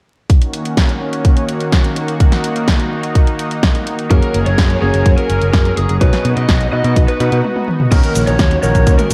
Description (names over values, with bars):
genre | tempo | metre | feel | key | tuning
italo disco | 126 BPM | 4/4 | straight | Eb minor | A4 = 440 Hz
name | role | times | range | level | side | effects
lush unison pad | sustained chords | 0.3-9.1 s | Eb3 to Bb4 | -23 LUFS | equal | chorus, vintage 12-bit sampler grit, shimmer reverb
electronic kick drum | drums | 0.3-9.0 s | none | -14 LUFS | equal | small room reverb
house drum kit | drums | 0.3-9.1 s | cabasa, crash cymbal, hi-hat, snare drum, toms | -22 LUFS | equal | small room reverb, gated reverb
lead guitar through a small cranked amp | melody | 4.1-9.1 s | Ab4 to D#5 | -22 LUFS | equal | overdrive, tape echo, shimmer reverb
clear electric grand piano | stabs | 4.1-9.1 s | B2 to Db5 | -24 LUFS | equal | shimmer reverb
modern bright picked electric bass | bass | 4.1-9.1 s | Gb1 to B2 | -19 LUFS | equal | none
room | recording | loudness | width
light reverb | vinyl crackle | -14 LUFS | mono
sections
0.3-7.9 A section; 7.9-9.1 B section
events
break 7.4-7.9; drum fill 7.4-7.9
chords
0.3 Ebm7; 4.1 Gbadd9; 6.0 B; 7.9 Ebm7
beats
| 0.30 0.77 1.25 1.73 | 2.20 2.68 3.15 3.63 | 4.11 4.58 5.06 5.54 | 6.01 6.49 6.96 7.44 | 7.92 8.39 8.87